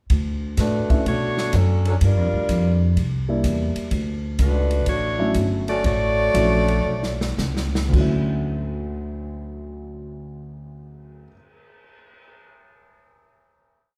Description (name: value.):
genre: jazz, big band swing.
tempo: 107-126 BPM.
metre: 4/4.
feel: swing 67% on 8ths.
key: D major.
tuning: A4 = 439 Hz.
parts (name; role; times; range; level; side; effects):
upright bass; bass; 0.1-11.3 s; G1 to B2; -25 LUFS; equal; none.
swinging big-band drum kit; drums; 0.1-12.3 s; crash cymbal, cymbal swell, hi-hat, kick drum, ride cymbal, snare drum; -28 LUFS; equal; none.
warm saxophone section; melody; 0.6-7.4 s; F#3 to D5; -25 LUFS; equal; none.
dark baby grand piano; accompaniment; 0.9-11.4 s; D2 to E4; -29 LUFS; equal; none.
room: wet large studio reverb, RT60 1.2 s.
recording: heard from further back in the room.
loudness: -21 LUFS.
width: mono.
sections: 0.1-7.9 A section; 7.9-12.4 final chord.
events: slowing down 3.9-7.9; drum fill 6.9-7.9.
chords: 0.1 Dmaj7; 1.1 Bm9; 2.0 Gm7; 3.0 C9; 3.9 Dmaj7.